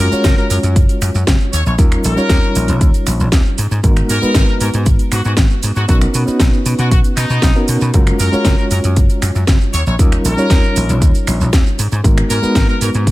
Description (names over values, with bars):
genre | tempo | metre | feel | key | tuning
nu-disco, nu disco | 117 BPM | 4/4 | straight | unclear | A4 = 440 Hz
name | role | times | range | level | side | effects
brilliant trumpet section | melody | 0.0-12.9 s | D#4 to C#5 | -23 LUFS | left 1 dB | tape echo
reed electric piano | accompaniment | 0.0-13.1 s | G3 to C#5 | -19 LUFS | equal | fast tremolo, sidechain pumping, low-pass filter, ping-pong delay
vintage slap bass | bass | 0.0-13.1 s | F#1 to B2 | -16 LUFS | equal | none
house drum kit | drums | 0.1-13.1 s | finger snaps, hi-hat, shaker, snare drum | -21 LUFS | right 1 dB | none
egg shaker | percussion | 0.1-13.1 s | none | -34 LUFS | right 3 dB | none
electronic kick drum | drums | 0.2-13.1 s | none | -13 LUFS | equal | none
room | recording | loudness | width
little or no reverb | none | -11 LUFS | side -17 dB against mid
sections
0.0-13.1 A section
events
none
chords
0.0 F#maj7; 1.5 D#7; 3.6 G#m9; 5.9 Bmaj7; 7.9 F#maj7; 9.7 D#7; 11.8 G#m9